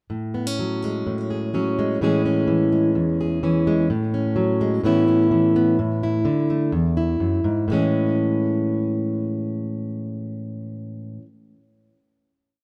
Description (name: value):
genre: folk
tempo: 127 BPM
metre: 4/4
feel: straight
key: A major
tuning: A4 = 441 Hz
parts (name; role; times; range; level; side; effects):
- fingerpicked plugged-in steel-string acoustic guitar; solo; 0.1-11.3 s; E2 to G#4; -22 LUFS; equal; digital delay
room: moderate studio reverb, RT60 0.5 s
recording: rough home demo mix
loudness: -21 LUFS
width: mono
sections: 0.1-7.7 pre-chorus; 7.7-11.5 final chord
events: none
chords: 0.1 F#sus2/A; 2.0 Amaj7; 3.9 F#sus2/A; 4.8 C#m7/A; 5.8 Dsus2/A; 6.7 E; 7.7 Amaj7